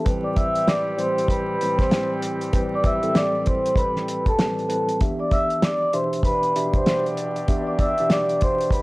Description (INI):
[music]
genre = hip hop, boom-bap hip-hop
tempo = 97 BPM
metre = 4/4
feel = swing 61% on 16ths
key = A minor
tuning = A4 = 440 Hz
[part]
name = mellow tine electric piano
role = accompaniment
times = 0.0-8.8 s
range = A2 to E5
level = -27 LUFS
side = equal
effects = medium stereo tremolo, cassette tape, high-pass filter, low-pass filter
[part]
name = mellow horn section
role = stabs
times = 0.1-8.8 s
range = B2 to D5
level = -30 LUFS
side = equal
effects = high-pass filter, low-pass filter
[part]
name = cloth-damped thuddy drum kit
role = drums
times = 0.1-8.8 s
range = hi-hat, kick drum, snare drum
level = -22 LUFS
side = equal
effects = none
[part]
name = vibraphone with soft mallets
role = melody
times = 0.2-8.8 s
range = A4 to E6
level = -23 LUFS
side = equal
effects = high-pass filter, low-pass filter
[sound]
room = studio reverb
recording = dry, gritty hardware recording, vinyl crackle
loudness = -19 LUFS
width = side -22 dB against mid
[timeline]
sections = 0.0-8.8 A section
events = none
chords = 0.1 Am9; 5.0 Em7